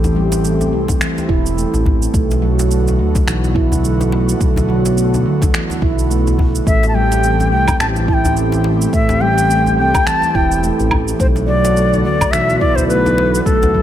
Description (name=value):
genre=organic downtempo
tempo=106 BPM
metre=4/4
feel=swing 57% on 16ths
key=unclear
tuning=A4 = 440 Hz
part: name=airy breathy pad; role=sustained chords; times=0.0-13.8 s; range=D3 to G4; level=-23 LUFS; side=equal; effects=chorus, sidechain pumping
part: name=smooth synth bass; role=bass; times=0.0-13.8 s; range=E1 to D2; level=-17 LUFS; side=equal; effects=sidechain pumping
part: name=electronic shaker, finger snaps and woodblock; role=drums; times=0.0-13.7 s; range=none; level=-23 LUFS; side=right 2 dB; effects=none
part: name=djembe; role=percussion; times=0.0-13.8 s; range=none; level=-23 LUFS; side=left 1 dB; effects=none
part: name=handpan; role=arpeggios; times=0.2-13.8 s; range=E3 to E4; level=-19 LUFS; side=right 3 dB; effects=ping-pong delay
part: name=electronic kick drum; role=drums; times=0.9-13.8 s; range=none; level=-18 LUFS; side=equal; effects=none
part: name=bright reedy ney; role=melody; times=6.7-13.8 s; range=A4 to A5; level=-17 LUFS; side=left 1 dB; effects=ping-pong delay
room=light reverb, digital ambience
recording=none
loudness=-12 LUFS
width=side -11 dB against mid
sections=0.0-13.8 A section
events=none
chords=0.0 Am7; 2.1 Bm7; 6.7 Am7; 11.2 Bm7